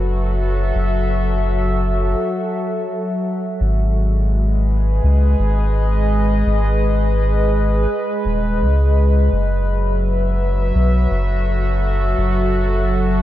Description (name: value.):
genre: ambient dub.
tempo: 84 BPM.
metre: 4/4.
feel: swing 55% on 16ths.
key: unclear.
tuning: A4 = 439 Hz.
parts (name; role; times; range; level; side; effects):
warbly tape-like pad; sustained chords; 0.0-13.2 s; F#3 to E5; -20 LUFS; equal; chorus, built-in reverb.
soft dub sub bass; bass; 0.0-13.2 s; D#1 to C#2; -17 LUFS; equal; none.
room: little or no reverb.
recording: none.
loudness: -15 LUFS.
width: side -13 dB against mid.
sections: 0.0-3.6 A section; 3.6-13.2 B section.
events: break 2.2-3.6.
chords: 0.0 F#m7; 3.6 G#m; 9.3 F#m7.